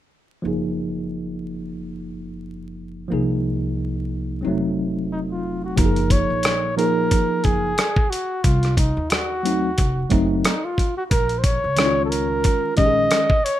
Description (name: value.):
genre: hip hop, jazz-hop.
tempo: 90 BPM.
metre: 4/4.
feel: swing 57% on 16ths.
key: F# major.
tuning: A4 = 441 Hz.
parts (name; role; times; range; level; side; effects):
tine electric piano; accompaniment; 0.4-13.3 s; D#3 to G#4; -23 LUFS; equal; overdrive, fast stereo tremolo, low-pass filter.
upright bass; bass; 0.4-13.1 s; F1 to Eb2; -26 LUFS; equal; none.
breathy flugelhorn; melody; 5.1-13.6 s; Eb4 to D#5; -22 LUFS; right 1 dB; tape echo.
dusty soul sampler-style drum kit; drums; 5.8-13.6 s; hi-hat, kick drum, rim click; -20 LUFS; equal; none.
room: light reverb.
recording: rough home demo mix, vinyl crackle.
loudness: -18 LUFS.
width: side -12 dB against mid.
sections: 0.4-5.8 A section; 5.8-13.6 B section.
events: filter sweep on tine electric piano 0.4-5.8.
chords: 0.4 F#6; 3.1 G#69/B#; 4.4 F7b9; 5.8 F#6; 8.4 Cdim; 9.8 F7b9; 11.1 A#m7.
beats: | 0.44 1.11 1.78 2.44 | 3.11 3.78 4.44 5.11 | 5.78 6.44 7.11 7.78 | 8.44 9.11 9.78 10.44 | 11.11 11.78 12.44 13.11.